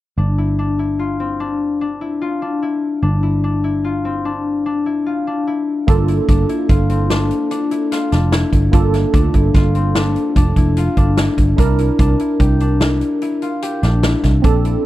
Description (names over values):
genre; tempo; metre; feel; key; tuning
progressive instrumental, band music in an uneven meter; 147 BPM; 7/4; straight; G dorian; A4 = 439 Hz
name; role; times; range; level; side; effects
concert harp; arpeggios; 0.2-14.9 s; C4 to G4; -19 LUFS; left 4 dB; none
picked electric bass; bass; 0.2-14.8 s; F1 to D2; -16 LUFS; equal; none
barky tine electric piano; accompaniment; 5.9-14.9 s; Bb3 to Bb4; -23 LUFS; right 10 dB; overdrive, analog chorus
swinging big-band drum kit; drums; 5.9-14.7 s; hi-hat, kick drum, snare drum; -17 LUFS; equal; none
room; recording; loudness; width
little or no reverb; dry, close 1970s-style studio recording; -14 LUFS; side -15 dB against mid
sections
0.2-5.9 A section; 5.9-14.9 B section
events
none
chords
0.2 G5; 5.9 Gm7; 11.6 C7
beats
| 0.18 0.59 0.99 1.40 1.81 2.22 2.62 | 3.03 3.44 3.85 4.26 4.66 5.07 5.48 | 5.88 6.29 6.70 7.11 7.51 7.92 8.33 | 8.73 9.14 9.55 9.96 10.36 10.77 11.18 | 11.59 11.99 12.40 12.81 13.22 13.63 14.04 | 14.45 14.85